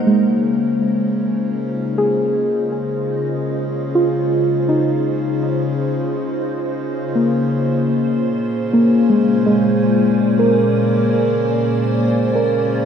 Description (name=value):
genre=ambient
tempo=61 BPM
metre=4/4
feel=straight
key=Db major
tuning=A4 = 439 Hz
part: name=soft additive organ-like pad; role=sustained chords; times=0.0-12.9 s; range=Bb2 to Ab5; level=-21 LUFS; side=equal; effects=ensemble chorus, built-in reverb
part: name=muted felt-like synth keys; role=arpeggios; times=0.0-12.9 s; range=Ab3 to Bb4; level=-17 LUFS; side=equal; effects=chorus, tape echo
part: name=hand-pumped harmonium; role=drone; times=0.0-12.9 s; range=Db3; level=-28 LUFS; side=left 1 dB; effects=stereo widening
room=wet lush hall reverb, RT60 2.9 s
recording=none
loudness=-15 LUFS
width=side -7 dB against mid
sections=0.0-12.9 A section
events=fade-in on ambient pad 0.0-12.9; fade-in on harmonium 0.0-12.9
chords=0.0 Dbmaj7; 7.9 Bb7